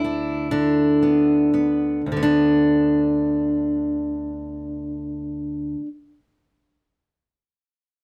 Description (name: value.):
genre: folk, solo fingerstyle acoustic guitar.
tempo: 38 BPM (dotted quarters).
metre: 6/8.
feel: rubato.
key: unclear.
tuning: A4 = 440 Hz.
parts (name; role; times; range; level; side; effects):
fingerpicked steel-string acoustic guitar; solo; 0.0-5.9 s; D2 to E4; -21 LUFS; equal; none.
room: light reverb.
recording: close, detailed microphones.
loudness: -21 LUFS.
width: mono.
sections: 0.0-2.1 A section; 2.1-5.3 B section.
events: slowing down 0.0-2.1.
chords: 0.0 Bm/D.